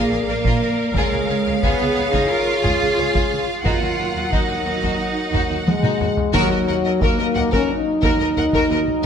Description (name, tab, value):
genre	cinematic, epic orchestral film score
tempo	89 BPM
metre	4/4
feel	straight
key	Eb minor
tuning	A4 = 440 Hz
part	rich symphonic violin section	melody	0.0-9.1 s	Bb4 to Gb5	-26 LUFS	left 3 dB	none
part	rich symphonic violin section	second line	0.0-8.8 s	Eb4 to Eb5	-28 LUFS	left 2 dB	none
part	rich symphonic viola section	accompaniment	0.0-8.8 s	Gb3 to Bb4	-27 LUFS	right 2 dB	none
part	warm French horn section	sustained chords	0.0-9.1 s	Gb3 to D5	-22 LUFS	left 4 dB	none
part	clear symphonic cello section	bass	0.0-8.8 s	Eb2 to F4	-24 LUFS	right 4 dB	none
part	rich symphonic double bass section	bass	0.1-8.8 s	Bb1 to Eb2	-28 LUFS	right 4 dB	none
part	taiko ensemble	drums	0.4-9.1 s	none	-23 LUFS	equal	none
part	dark trombone section	sustained chords	6.3-9.1 s	Gb3 to Eb4	-25 LUFS	right 6 dB	none
room	wet scoring stage reverb, RT60 1.7 s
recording	none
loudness	-17 LUFS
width	side -7 dB against mid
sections	0.0-6.4 A section; 6.4-9.1 A section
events	drum fill 5.7-6.4; band accent 6.4-7.0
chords	0.0 Bb; 0.9 Db; 3.6 Ebm